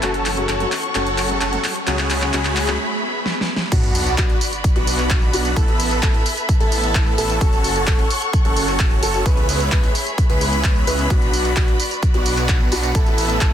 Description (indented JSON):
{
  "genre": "EDM, festival progressive house",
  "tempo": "130 BPM",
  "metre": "4/4",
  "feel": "straight",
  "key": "unclear",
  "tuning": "A4 = 440 Hz",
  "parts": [
    { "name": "felt-muted upright piano", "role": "accompaniment", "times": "0.0-2.8 s", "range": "F#3 to G#4", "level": "-29 LUFS", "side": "left 4 dB", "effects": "sidechain pumping, ping-pong delay" },
    { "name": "dark chamber string section", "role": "sustained chords", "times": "0.0-13.5 s", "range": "F#4 to C#6", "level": "-26 LUFS", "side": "left 1 dB", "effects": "sidechain pumping, low-pass filter" },
    { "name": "big supersaw lead", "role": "riff", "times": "0.0-13.5 s", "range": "G#3 to B4", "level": "-23 LUFS", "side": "right 1 dB", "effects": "phaser, sidechain pumping, low-pass filter, ping-pong delay" },
    { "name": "detuned saw bass", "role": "bass", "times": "0.0-13.5 s", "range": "F#1 to C#2", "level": "-24 LUFS", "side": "equal", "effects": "sidechain pumping" },
    { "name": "big-room dance drum kit", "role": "drums", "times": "0.0-13.5 s", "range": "crash cymbal, handclaps, hi-hat, snare drum, tambourine", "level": "-24 LUFS", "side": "equal", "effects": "none" },
    { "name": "riser, swell and sub drop", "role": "sound effects", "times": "0.1-5.6 s", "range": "none", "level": "-30 LUFS", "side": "right 1 dB", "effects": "none" },
    { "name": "dark baby grand piano", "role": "arpeggios", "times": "3.7-13.5 s", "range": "F#4 to B4", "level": "-27 LUFS", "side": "equal", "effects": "sidechain pumping, ping-pong delay" },
    { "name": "electronic kick drum", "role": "drums", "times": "3.7-13.5 s", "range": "none", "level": "-17 LUFS", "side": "equal", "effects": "none" }
  ],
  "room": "little or no reverb",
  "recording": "dense, heavily limited modern master",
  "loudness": "-16 LUFS",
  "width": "side -10 dB against mid",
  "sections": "0.0-3.7 A section; 3.7-13.5 B section",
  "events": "build-up 0.0-3.7; drum fill 0.0-2.8, 3.3-3.7; riser 0.1-2.8; break 2.8-3.7; swell 2.8-3.7; drop 3.7-13.5; impact 3.7-5.6",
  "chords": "0.0 F#m; 1.9 C#m7; 3.7 Bm; 5.6 Asus2; 7.4 F#m; 9.3 C#m7; 11.1 Bm; 12.9 Asus2"
}